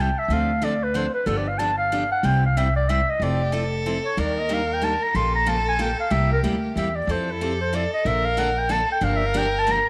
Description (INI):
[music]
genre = acoustic string swing (jazz manouche)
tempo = 186 BPM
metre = 3/4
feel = swing 60% on 8ths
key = C major, F major from 3.2 s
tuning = A4 = 440 Hz
[part]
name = breathy clarinet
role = melody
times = 0.0-9.9 s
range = E4 to C6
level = -26 LUFS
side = equal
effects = none
[part]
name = picked steel-string acoustic guitar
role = accompaniment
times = 0.0-9.8 s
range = C3 to A4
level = -31 LUFS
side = equal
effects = none
[part]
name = upright bass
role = bass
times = 0.0-9.8 s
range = F1 to F2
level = -27 LUFS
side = equal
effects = none
[part]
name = warm violin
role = second line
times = 3.2-9.9 s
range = G4 to Bb4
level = -30 LUFS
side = equal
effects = none
[sound]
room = moderate plate reverb, RT60 3.3 s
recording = none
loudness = -23 LUFS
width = mono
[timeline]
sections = 0.0-3.2 A section; 3.2-9.9 A section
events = clarinet solo 0.0-9.9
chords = 0.3 Dm7; 1.3 G7; 2.2 C; 3.2 Fmaj7; 4.2 Ebmaj7; 5.1 Bbm6; 6.1 C9; 7.1 Fmaj7; 8.1 Bbmaj7; 9.0 Gm7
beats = | 0.30 0.62 0.94 | 1.26 1.59 1.91 | 2.23 2.56 2.88 | 3.20 3.53 3.85 | 4.17 4.50 4.82 | 5.14 5.47 5.79 | 6.11 6.44 6.76 | 7.08 7.41 7.73 | 8.05 8.38 8.70 | 9.02 9.34 9.67